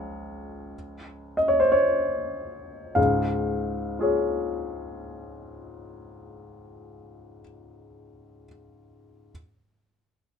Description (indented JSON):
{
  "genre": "classical, romantic character piece for solo piano",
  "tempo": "51-59 BPM",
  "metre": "4/4",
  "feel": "rubato",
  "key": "Db major",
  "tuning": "A4 = 444 Hz",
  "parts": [
    { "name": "warm baby grand piano", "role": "solo", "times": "0.0-9.3 s", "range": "Db2 to F5", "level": "-24 LUFS", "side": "left 1 dB", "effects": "none" }
  ],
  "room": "light reverb",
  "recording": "none",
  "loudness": "-22 LUFS",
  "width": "side -6 dB against mid",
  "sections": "0.0-3.0 A section; 3.0-7.1 B section",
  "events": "slowing down 0.0-3.0",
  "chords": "0.0 Db"
}